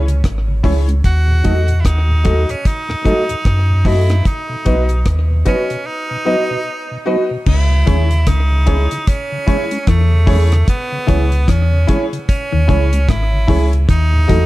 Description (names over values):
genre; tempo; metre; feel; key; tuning
roots reggae; 75 BPM; 4/4; swing 60% on 16ths; C# minor; A4 = 444 Hz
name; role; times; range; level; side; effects
edgy tenor saxophone; melody; 0.0-14.5 s; A3 to F#4; -22 LUFS; right 2 dB; tape echo
clear upright piano; stabs; 0.0-14.5 s; E4 to D#5; -22 LUFS; left 4 dB; none
warm sub bass; bass; 0.0-14.5 s; G#1 to F#2; -13 LUFS; equal; none
mellow tonewheel organ; accompaniment; 0.1-14.4 s; D#2 to D#4; -24 LUFS; left 1 dB; slow rotary speaker, slapback echo
deep reggae drum kit; drums; 0.1-14.5 s; crash cymbal, hi-hat, kick drum, rim click; -16 LUFS; equal; none
mellow electric guitar; accompaniment; 0.6-14.5 s; E4 to D#5; -25 LUFS; right 6 dB; phaser, tape echo
clean electric guitar; riff; 7.5-14.5 s; G#2 to E3; -21 LUFS; left 6 dB; none
room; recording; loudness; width
light reverb, studio ambience; dark, warm production; -12 LUFS; side -17 dB against mid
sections
0.0-7.5 A section; 7.5-14.5 B section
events
break 5.9-7.5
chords
0.0 C#m; 1.0 D#dim; 4.3 B; 7.5 C#m; 13.9 D#dim